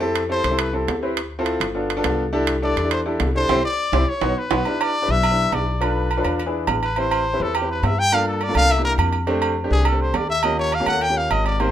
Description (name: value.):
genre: Afro-Cuban jazz.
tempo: 207 BPM.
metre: 4/4.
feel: straight.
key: C major.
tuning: A4 = 443 Hz.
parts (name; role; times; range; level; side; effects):
warm concert grand piano; accompaniment; 0.0-11.7 s; A3 to B4; -23 LUFS; equal; none.
upright bass; bass; 0.0-11.7 s; G1 to G2; -24 LUFS; left 1 dB; none.
timbales and agogo bells; percussion; 0.2-11.7 s; none; -25 LUFS; right 7 dB; none.
clear trumpet; melody; 0.3-11.7 s; G4 to G5; -22 LUFS; left 2 dB; none.
room: moderate studio reverb, RT60 0.7 s.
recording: minimal, uncompressed stereo recording.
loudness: -18 LUFS.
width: side -11 dB against mid.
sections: 0.0-4.7 A section; 4.7-11.7 A section.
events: trumpet solo 0.0-11.7; band accent 3.5-4.7; drum fill 3.8-4.7.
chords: 0.0 Fmaj9; 1.2 Dm7; 1.8 G9; 2.3 C69; 4.1 B; 4.7 Em7; 5.8 Bm7b5; 6.4 E7; 7.0 Am7; 8.1 Gm7; 8.7 C7; 9.3 F69; 10.4 Eb7.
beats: | 0.01 0.30 0.59 0.88 | 1.17 1.47 1.75 2.04 | 2.34 2.63 2.92 3.21 | 3.50 3.79 4.08 4.37 | 4.66 4.95 5.24 5.52 | 5.81 6.10 6.39 6.68 | 6.97 7.26 7.55 7.83 | 8.12 8.41 8.70 8.99 | 9.28 9.57 9.86 10.15 | 10.44 10.72 11.02 11.30 | 11.60.